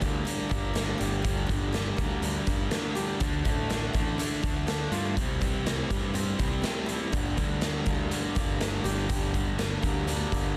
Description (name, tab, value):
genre	quiet-loud alternative rock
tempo	122 BPM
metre	4/4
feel	straight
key	G minor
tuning	A4 = 440 Hz
part	picked swing-style acoustic guitar	arpeggios	0.0-10.6 s	G2 to G4	-40 LUFS	equal	none
part	thick fuzz guitar	riff	0.0-10.6 s	G2 to D4	-35 LUFS	equal	distortion
part	fuzz picked electric bass	bass	0.0-10.5 s	G1 to G2	-35 LUFS	equal	overdrive
part	raw garage drum kit	drums	0.0-10.4 s	hi-hat, kick drum, snare drum	-32 LUFS	equal	none
room	small room ambience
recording	dense, heavily limited modern master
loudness	-29 LUFS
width	mono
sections	0.0-10.6 A section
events	none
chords	0.0 Gm; 3.2 Dm; 5.2 C; 7.1 Gm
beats	0.27 0.76 | 1.25 1.74 2.23 2.72 | 3.21 3.70 4.19 4.68 | 5.17 5.66 6.15 6.64 | 7.14 7.63 8.12 8.61 | 9.10 9.59 10.08 10.57